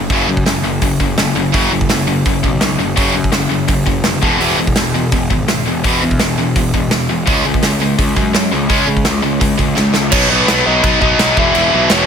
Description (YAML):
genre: punk rock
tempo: 168 BPM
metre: 4/4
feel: straight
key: unclear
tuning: A4 = 445 Hz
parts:
  - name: distorted electric guitar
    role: riff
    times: 0.0-12.1 s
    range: E2 to C#4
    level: -18 LUFS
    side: right 14 dB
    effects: overdrive
  - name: tight distorted guitar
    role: riff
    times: 0.0-12.1 s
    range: E2 to C#4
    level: -17 LUFS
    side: left 11 dB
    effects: distortion
  - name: fuzz picked electric bass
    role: bass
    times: 0.0-12.0 s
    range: E1 to C#3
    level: -19 LUFS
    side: right 1 dB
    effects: overdrive
  - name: big rock drum kit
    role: drums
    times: 0.1-12.0 s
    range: crash cymbal, hi-hat, kick drum, snare drum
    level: -16 LUFS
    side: right 1 dB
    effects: none
  - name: overdriven electric guitar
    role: melody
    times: 10.1-12.1 s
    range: B3 to E5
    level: -17 LUFS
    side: left 2 dB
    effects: none
room: light reverb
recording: none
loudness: -11 LUFS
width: side -7 dB against mid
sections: 0.0-10.1 A section; 10.1-12.1 B section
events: drum fill 9.8-10.1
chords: 0.0 F#5; 4.2 E5; 7.3 C#5; 10.1 B; 11.4 E5